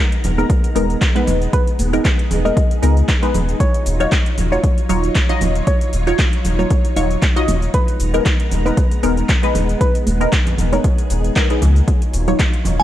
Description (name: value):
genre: deep house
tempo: 116 BPM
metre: 4/4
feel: swing 55% on 16ths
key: unclear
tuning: A4 = 442 Hz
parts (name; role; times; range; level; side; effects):
- soft string machine; sustained chords; 0.0-12.8 s; Gb3 to Bb5; -26 LUFS; equal; ensemble chorus, sidechain pumping
- house drum kit; drums; 0.1-12.8 s; handclaps, hi-hat, shaker; -25 LUFS; equal; studio reverb
- sub bass with octave; bass; 0.2-12.8 s; Eb1 to Db2; -18 LUFS; equal; tube saturation, sidechain pumping
- congas; percussion; 0.2-12.8 s; none; -25 LUFS; right 3 dB; none
- soft round pluck; melody; 0.4-11.0 s; Bb4 to Eb5; -26 LUFS; right 1 dB; chorus, cassette tape, analog delay
- filtered dub chord stab; stabs; 0.4-12.8 s; Gb3 to Eb5; -21 LUFS; equal; phaser, sidechain pumping, analog delay
- electronic kick drum; drums; 0.5-12.5 s; none; -16 LUFS; equal; studio reverb
- glassy synth bell; melody; 12.8 s; Ab5; -12 LUFS; right 3 dB; chorus, phaser, vintage 12-bit sampler grit
room: little or no reverb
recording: cassette tape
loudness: -14 LUFS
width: side -12 dB against mid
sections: 0.0-12.8 A section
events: none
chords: 0.0 Abmadd9/Eb; 3.6 Ebm9; 7.7 Abmadd9/Eb; 11.9 Ebm9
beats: 0.50 1.01 | 1.53 2.05 2.57 3.08 | 3.60 4.12 4.63 5.15 | 5.67 6.19 6.70 7.22 | 7.74 8.26 8.77 9.29 | 9.81 10.32 10.84 11.36 | 11.88 12.39